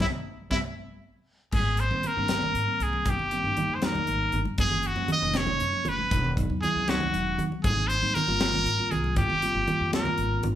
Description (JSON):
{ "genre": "electric jazz fusion", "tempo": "79 BPM (dotted quarters)", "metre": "6/8", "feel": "straight", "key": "Ab major", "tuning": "A4 = 441 Hz", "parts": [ { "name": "trumpet with straight mute", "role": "melody", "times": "0.0-10.5 s", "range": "E4 to Eb5", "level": "-27 LUFS", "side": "equal", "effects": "none" }, { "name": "reedy silver concert flute", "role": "second line", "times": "0.0-0.6 s", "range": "E5", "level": "-36 LUFS", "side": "left 2 dB", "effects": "none" }, { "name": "mellow tine electric piano", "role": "accompaniment", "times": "0.0-10.5 s", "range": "Eb3 to F4", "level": "-33 LUFS", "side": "right 1 dB", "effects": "none" }, { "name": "upright bass", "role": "bass", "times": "0.0-10.6 s", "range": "E1 to Ab2", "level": "-31 LUFS", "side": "equal", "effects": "none" }, { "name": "crisp fusion drum kit", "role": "drums", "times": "0.0-10.6 s", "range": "crash cymbal, hi-hat, kick drum, snare drum", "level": "-31 LUFS", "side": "equal", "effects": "none" }, { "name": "congas", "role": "percussion", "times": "0.0-10.6 s", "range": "none", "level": "-33 LUFS", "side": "right 1 dB", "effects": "none" } ], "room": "moderate large studio reverb, RT60 1.2 s", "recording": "band playing live in one room", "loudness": "-24 LUFS", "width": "side -11 dB against mid", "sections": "0.0-1.5 A section; 1.5-10.6 B section", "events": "band accent 0.0-1.5; drum fill 0.8-1.5; tine electric piano fill 0.8-1.5", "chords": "0.0 C; 0.8 N.C.; 1.5 Abmaj9; 4.6 Gbmaj9; 6.1 Emaj9; 7.6 Abmaj9" }